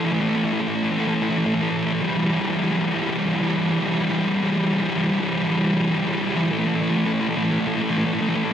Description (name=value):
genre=rock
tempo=106 BPM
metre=4/4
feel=straight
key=E minor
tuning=A4 = 440 Hz
part: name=thick fuzz guitar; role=solo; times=0.0-8.5 s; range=E3 to A3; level=-20 LUFS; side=equal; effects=distortion
room=moderate scoring stage reverb, RT60 1.8 s, digital ambience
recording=none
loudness=-20 LUFS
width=side -9 dB against mid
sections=0.0-8.5 A section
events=build-up 0.0-8.5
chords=0.0 Esus4; 2.0 Em; 6.5 Esus4